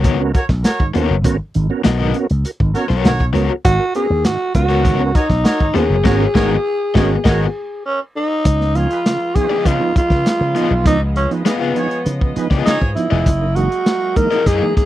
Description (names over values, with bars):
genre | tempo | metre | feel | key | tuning
funk | 100 BPM | 4/4 | straight | G# dorian | A4 = 437 Hz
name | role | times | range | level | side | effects
overdriven electric guitar | accompaniment | 0.0-14.6 s | B3 to E#5 | -20 LUFS | left 8 dB | tremolo
tonewheel organ | stabs | 0.0-14.8 s | G#2 to A#4 | -22 LUFS | right 5 dB | chorus vibrato, slow rotary speaker
slap bass with an envelope filter | bass | 0.0-14.8 s | E#1 to C#3 | -17 LUFS | equal | none
crunchy breakbeat drum kit | drums | 0.0-14.9 s | crash cymbal, hi-hat, kick drum, snare drum | -16 LUFS | equal | none
warm horn section | second line | 0.3-12.9 s | E#4 to D#5 | -24 LUFS | right 2 dB | none
growling tenor saxophone | melody | 3.6-14.9 s | B3 to A#4 | -18 LUFS | equal | none
warm studio string section | sustained chords | 8.5-14.9 s | E#3 to D#5 | -30 LUFS | equal | none
room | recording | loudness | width
little or no reverb | dry, close 1970s-style studio recording | -14 LUFS | side -14 dB against mid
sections
0.0-8.5 A section; 8.5-14.9 B section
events
band accent 6.0-8.5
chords
0.0 G#m11; 8.5 C#9; 13.3 F#13